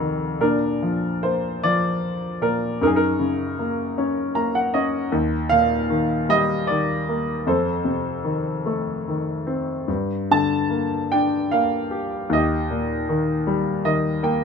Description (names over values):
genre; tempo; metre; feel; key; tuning
classical, lyrical solo piano; 50 BPM (dotted quarters); 6/8; uneven beats, rubato; Bb major; A4 = 440 Hz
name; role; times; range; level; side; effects
clear grand piano; solo; 0.0-14.4 s; Eb2 to Bb5; -20 LUFS; left 1 dB; none
room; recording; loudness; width
moderate small room reverb, RT60 0.5 s; none; -20 LUFS; side -6 dB against mid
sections
0.4-14.4 A section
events
grand piano fill 4.0-5.1, 13.5-14.4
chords
0.4 Bb; 2.8 Gb6; 5.1 Eb; 7.5 F7; 9.9 Gmadd9; 12.3 Eb